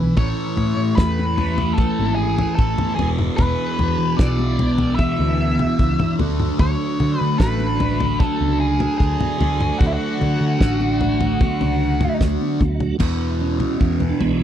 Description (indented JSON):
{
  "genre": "psychedelic rock",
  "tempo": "75 BPM",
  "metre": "4/4",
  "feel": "straight",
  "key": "E mixolydian",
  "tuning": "A4 = 441 Hz",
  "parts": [
    { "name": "tonewheel organ", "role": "sustained chords", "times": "0.0-14.4 s", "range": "E3 to F#4", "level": "-29 LUFS", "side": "right 8 dB", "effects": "slow rotary speaker, overdrive, chorus vibrato" },
    { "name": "thick fuzz guitar", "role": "riff", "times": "0.0-14.4 s", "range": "E2 to D4", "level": "-22 LUFS", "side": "equal", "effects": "distortion, phaser" },
    { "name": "hollow-body short-scale picked electric bass", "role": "bass", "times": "0.0-14.4 s", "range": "E1 to D3", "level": "-22 LUFS", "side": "equal", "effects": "none" },
    { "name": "octave-fuzz lead guitar", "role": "melody", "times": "0.2-12.2 s", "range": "E4 to E5", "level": "-26 LUFS", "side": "left 1 dB", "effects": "distortion, tape echo" },
    { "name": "damped 70s drum kit", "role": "drums", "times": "0.2-14.4 s", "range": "crash cymbal, kick drum, snare drum, toms", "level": "-21 LUFS", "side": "equal", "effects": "none" },
    { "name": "congas", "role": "percussion", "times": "1.2-14.4 s", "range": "none", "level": "-31 LUFS", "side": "left 7 dB", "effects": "none" }
  ],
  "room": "little or no reverb",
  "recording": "dry, close 1970s-style studio recording",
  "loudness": "-17 LUFS",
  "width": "side -10 dB against mid",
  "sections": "0.0-13.0 A section; 13.0-14.4 B section",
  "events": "drum fill 0.0, 12.2-13.0; tonewheel organ solo 13.0-14.4",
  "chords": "0.2 Amaj7; 3.0 E5; 6.2 Dmaj7; 13.0 E"
}